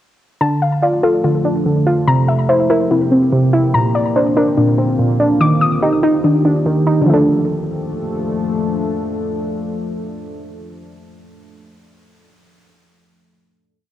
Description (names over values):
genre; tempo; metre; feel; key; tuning
hip hop, drill; 144 BPM; 4/4; half-time; D minor; A4 = 440 Hz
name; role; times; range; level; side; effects
warbly dusty pluck; accompaniment; 0.4-10.7 s; Bb2 to F4; -15 LUFS; right 2 dB; chorus, low-pass filter, cassette tape
deep dark ambient pad; sustained chords; 0.9-10.6 s; D3 to A4; -22 LUFS; left 1 dB; chorus, built-in reverb, cassette tape
soft round pluck; arpeggios; 0.4-10.7 s; Eb3 to Eb6; -18 LUFS; left 4 dB; chorus, low-pass filter, cassette tape, analog delay
room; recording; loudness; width
light reverb; home recording on cassette; -13 LUFS; side -12 dB against mid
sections
0.4-7.1 breakdown; 7.1-10.4 final chord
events
none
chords
0.4 Dm; 2.1 C7; 3.7 Bbadd9; 5.4 Ebmaj7; 7.1 Dm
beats
| 0.41 0.82 1.24 1.66 | 2.07 2.49 2.91 3.32 | 3.74 4.16 4.57 4.99 | 5.41 5.82 6.24 6.66 | 7.07 7.49 7.91 8.32 | 8.74 9.16 9.57 9.99